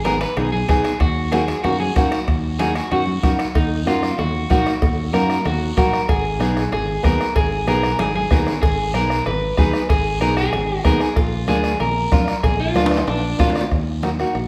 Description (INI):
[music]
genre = latin, cumbia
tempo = 189 BPM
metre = 4/4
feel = straight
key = Eb minor, Eb harmonic minor from 3.5 s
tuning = A4 = 440 Hz
[part]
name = electric guitar at the edge of break-up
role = second line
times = 0.0-13.7 s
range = D4 to Cb5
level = -25 LUFS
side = equal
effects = none
[part]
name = modern bright fingered electric bass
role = bass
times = 0.0-14.5 s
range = Ab1 to Gb2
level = -26 LUFS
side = equal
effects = none
[part]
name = nylon-string guitar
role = accompaniment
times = 0.1-14.4 s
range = Bb3 to Ab4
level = -25 LUFS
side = equal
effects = none
[part]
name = bombo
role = percussion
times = 0.1-14.5 s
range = none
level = -24 LUFS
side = equal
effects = none
[part]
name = congas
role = percussion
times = 0.1-14.5 s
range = none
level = -30 LUFS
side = equal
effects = none
[part]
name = guiro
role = percussion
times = 0.1-14.5 s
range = none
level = -37 LUFS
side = equal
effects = none
[part]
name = timbales and cowbell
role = percussion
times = 0.1-13.7 s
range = none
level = -32 LUFS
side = equal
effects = none
[sound]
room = wet large studio reverb, RT60 1.2 s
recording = band playing live in one room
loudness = -19 LUFS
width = mono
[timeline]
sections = 0.0-3.5 A section; 3.5-13.7 B section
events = drum fill 8.0-8.6, 12.8-13.7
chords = 0.0 Abm; 1.0 Ebm; 6.1 Abm; 11.2 Bb; 13.7 Ebm